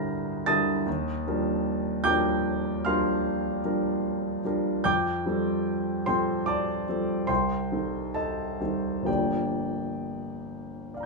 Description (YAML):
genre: classical, impressionist solo piano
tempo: 63-78 BPM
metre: 5/4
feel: rubato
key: unclear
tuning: A4 = 440 Hz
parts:
  - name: clear grand piano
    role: solo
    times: 0.0-11.1 s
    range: G1 to C7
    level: -25 LUFS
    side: equal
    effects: none
room: moderate studio reverb, RT60 0.6 s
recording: small room reverb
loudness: -25 LUFS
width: side -1 dB against mid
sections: 0.0-11.1 A section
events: none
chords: 0.0 Gm6; 0.9 Ebmaj9; 4.8 Fadd9; 7.3 Cm6; 9.1 Gm7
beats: 0.08 | 0.86 1.66 2.46 3.25 4.03 | 4.85 5.66 6.48 7.29 8.15 | 9.07 10.00 10.94